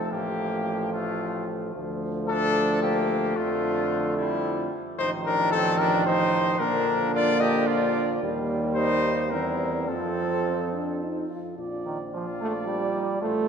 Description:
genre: classical, brass quintet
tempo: 110 BPM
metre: 3/4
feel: straight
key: Bb major from 5.0 s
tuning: A4 = 440 Hz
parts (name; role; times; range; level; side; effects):
- mellow cornet; melody; 0.0-13.3 s; D4 to Eb5; -28 LUFS; left 4 dB; none
- mellow trumpet; second line; 0.0-13.5 s; G3 to D5; -32 LUFS; right 5 dB; none
- clear euphonium; accompaniment; 0.0-13.5 s; D3 to A3; -30 LUFS; right 4 dB; none
- dark French horn; accompaniment; 0.0-13.5 s; F3 to F4; -30 LUFS; left 2 dB; none
- clear tuba; bass; 0.0-13.5 s; A1 to F2; -32 LUFS; right 4 dB; none
room: wet church reverb, RT60 3.2 s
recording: none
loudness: -23 LUFS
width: side -6 dB against mid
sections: 0.0-11.6 A section; 11.6-13.5 B section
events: none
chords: 0.1 F/A; 1.8 Dm; 3.4 Dm/F; 5.0 F7/A; 6.6 Bb; 8.2 Eb; 9.3 C7/E; 9.9 F; 11.6 Bb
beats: | 0.12 0.66 1.21 | 1.75 2.29 2.84 | 3.38 3.92 4.46 | 5.00 5.53 6.07 | 6.61 7.14 7.68 | 8.22 8.77 9.32 | 9.88 10.45 11.01 | 11.57 12.12 12.66 | 13.21

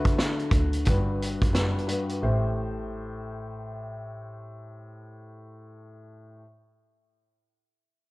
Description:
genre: hip hop, boom-bap hip-hop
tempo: 88 BPM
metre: 4/4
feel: swing 62% on 16ths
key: A dorian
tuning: A4 = 439 Hz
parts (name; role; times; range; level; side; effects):
- dark upright piano; accompaniment; 0.0-6.4 s; G2 to C5; -32 LUFS; left 2 dB; cassette tape, high-pass filter, low-pass filter
- vintage drum kit; drums; 0.1-2.2 s; hi-hat, kick drum, snare drum; -25 LUFS; equal; none
- warm double bass; bass; 0.5-5.7 s; F#1 to D2; -28 LUFS; equal; none
room: little or no reverb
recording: dark, warm production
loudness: -25 LUFS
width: side -21 dB against mid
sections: 0.0-2.2 A section; 2.2-5.0 B section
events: none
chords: 0.0 Bm7/D; 0.9 Gmaj7; 2.2 Am7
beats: 0.18 0.86 1.54 | 2.23 2.91 3.59 4.27

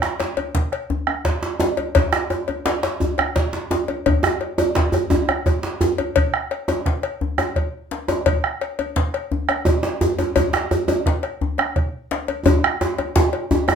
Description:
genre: west african traditional, West African drum ensemble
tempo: 114 BPM (dotted quarters)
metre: 12/8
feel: straight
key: none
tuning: none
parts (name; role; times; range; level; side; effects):
- bombo; percussion; 0.0-13.8 s; none; -21 LUFS; right 2 dB; none
- djembe; percussion; 0.0-13.8 s; none; -22 LUFS; right 2 dB; none
- cowbell; percussion; 0.2-13.8 s; none; -24 LUFS; left 8 dB; none
- djembe; percussion; 0.2-13.8 s; none; -24 LUFS; left 4 dB; none
room: moderate studio reverb, RT60 0.5 s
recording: minimal, uncompressed stereo recording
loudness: -18 LUFS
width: side -7 dB against mid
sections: 0.0-13.8 A section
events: drum fill 12.5-13.8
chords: none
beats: 0.38 0.90 1.43 | 1.95 2.48 3.01 3.53 | 4.06 4.58 5.11 5.63 | 6.16 6.68 7.21 7.74 | 8.26 8.79 9.31 9.84 | 10.36 10.89 11.41 11.94 | 12.46 12.98 13.51

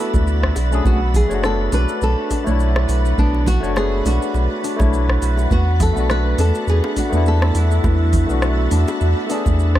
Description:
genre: sunset chillout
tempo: 103 BPM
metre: 4/4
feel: swing 56% on 16ths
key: unclear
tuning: A4 = 438 Hz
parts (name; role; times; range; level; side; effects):
- flamenco guitar; melody; 0.0-9.6 s; B3 to B4; -25 LUFS; equal; analog delay
- barky tine electric piano; accompaniment; 0.0-9.8 s; A3 to C#5; -25 LUFS; left 1 dB; auto-pan, analog delay
- shimmering ambient pad; sustained chords; 0.0-9.8 s; F#4 to B5; -30 LUFS; right 1 dB; chorus, built-in reverb, phaser
- concert harp; arpeggios; 0.0-9.8 s; B3 to F#4; -28 LUFS; left 7 dB; analog delay
- wind-like tuned noise texture; texture; 0.0-9.8 s; B5 to A6; -32 LUFS; right 1 dB; built-in reverb
- warm sub bass; bass; 0.1-9.8 s; F#1 to E2; -17 LUFS; equal; tube saturation
- deep house drum kit; drums; 0.1-9.8 s; hi-hat, rim click, shaker; -27 LUFS; left 1 dB; none
- electronic kick drum; drums; 0.1-9.8 s; none; -20 LUFS; equal; overdrive
- bongos and congas; percussion; 0.1-9.6 s; none; -29 LUFS; right 4 dB; analog delay
room: light reverb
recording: echo-heavy mix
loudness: -15 LUFS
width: side -13 dB against mid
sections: 0.0-9.8 A section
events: none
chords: 0.0 D69; 0.6 Bm7; 5.5 E9sus4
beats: 0.27 | 0.85 1.44 2.02 2.60 | 3.18 3.77 4.35 4.93 | 5.51 6.09 6.68 7.26 | 7.84 8.43 9.01 9.59

